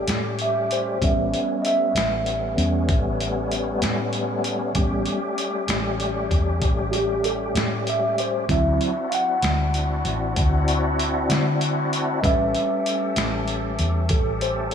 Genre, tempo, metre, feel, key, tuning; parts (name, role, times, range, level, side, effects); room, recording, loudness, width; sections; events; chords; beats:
slow blues; 64 BPM (dotted quarters); 12/8; straight; A mixolydian; A4 = 442 Hz
mellow tine electric piano; accompaniment; 0.0-14.7 s; F#3 to F#5; -24 LUFS; right 2 dB; medium stereo tremolo, slapback echo
bright tonewheel organ; sustained chords; 0.0-14.7 s; G3 to A4; -26 LUFS; left 2 dB; slow rotary speaker, chorus vibrato
vintage muted fingered electric bass; bass; 0.0-14.7 s; A1 to D3; -26 LUFS; left 1 dB
boom bap sampler-style drum kit; drums; 0.1-14.7 s; hi-hat, kick drum, snare drum; -26 LUFS; equal
moderate lush hall reverb, RT60 2.9 s; big arena sound, small room ambience; -20 LUFS; side -8 dB against mid
0.0-14.7 A section
tine electric piano solo 0.0-14.7
0.0 A9; 8.5 D9; 12.2 A9
0.09 | 1.03 1.96 2.90 3.83 | 4.76 5.70 6.63 7.56 | 8.50 9.43 10.36 11.30 | 12.23 13.16 14.10